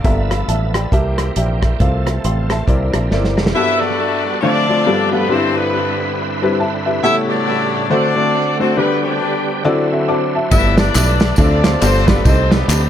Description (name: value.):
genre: uptempo gospel.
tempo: 138 BPM.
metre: 4/4.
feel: swing 61% on 8ths.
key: G major from 3.6 s.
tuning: A4 = 440 Hz.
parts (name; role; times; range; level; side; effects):
warm upright piano; accompaniment; 0.0-12.9 s; G2 to D6; -18 LUFS; left 2 dB; tape echo.
bright tonewheel organ; sustained chords; 0.0-12.9 s; G2 to E5; -24 LUFS; right 5 dB; slow rotary speaker, overdrive, chorus vibrato.
fingered electric bass; bass; 0.0-3.5, 10.5-12.9 s; F1 to D2; -17 LUFS; equal; none.
warm soul drum kit; drums; 0.0-3.5, 10.5-12.8 s; hi-hat, kick drum, ride cymbal, rim click, snare drum; -17 LUFS; right 1 dB; tape echo.
warm horn section; melody; 3.5-12.9 s; B3 to E5; -18 LUFS; left 2 dB; tape echo.
tambourine and handclaps; percussion; 10.5-12.8 s; none; -26 LUFS; equal; tape echo.
room: moderate spring reverb, RT60 1.2 s, studio reverb.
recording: echo-heavy mix.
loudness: -13 LUFS.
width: side -10 dB against mid.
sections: 0.0-3.6 A section; 3.6-12.9 B section.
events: drum fill 3.1-3.6.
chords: 0.0 G13; 0.9 C7; 1.8 F/C; 2.7 C9; 3.6 Gmaj9; 4.4 Dm7; 4.9 G9; 5.3 Cmaj9/G; 7.0 A13; 7.9 D7; 8.8 G/D; 9.6 D9; 10.5 G69; 11.4 Dm7; 11.8 G9; 12.2 Cm6.